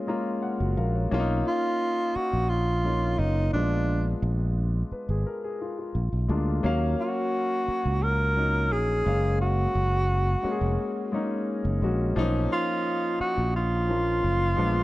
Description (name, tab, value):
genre	lush 1970s-style soul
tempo	87 BPM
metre	4/4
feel	straight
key	unclear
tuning	A4 = 440 Hz
part	warm grand piano	accompaniment	0.0-14.8 s	E#3 to Bb5	-30 LUFS	left 2 dB	none
part	fingered electric bass	bass	0.6-14.8 s	F1 to Eb2	-25 LUFS	equal	none
part	breathy tenor saxophone	melody	1.5-14.8 s	D4 to Bb4	-27 LUFS	right 1 dB	none
room	light reverb, small room ambience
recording	dark, warm production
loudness	-24 LUFS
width	side -17 dB against mid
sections	0.0-14.8 A section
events	grand piano fill 0.0-1.1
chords	0.0 Gbmaj7; 1.1 Bmaj9#11; 3.5 Bb7b9; 6.0 Bb7; 6.6 Ebm7; 9.1 Gbmaj7; 12.2 Bmaj9#11